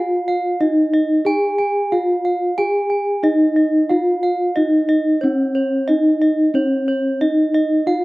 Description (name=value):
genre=gamelan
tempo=91 BPM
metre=4/4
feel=straight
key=unclear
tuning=A4 = 440 Hz
part: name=gamelan-type bronze metallophone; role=melody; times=0.0-8.0 s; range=Db4-45c to Ab4-35c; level=-16 LUFS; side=equal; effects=slapback echo
part: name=gamelan-type bronze metallophone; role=arpeggios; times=0.0-8.0 s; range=Db5-45c to Ab5-35c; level=-22 LUFS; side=right 3 dB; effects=none
room=light reverb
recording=recorded outdoors, with no room sound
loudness=-15 LUFS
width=side -21 dB against mid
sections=0.0-8.0 A section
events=none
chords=none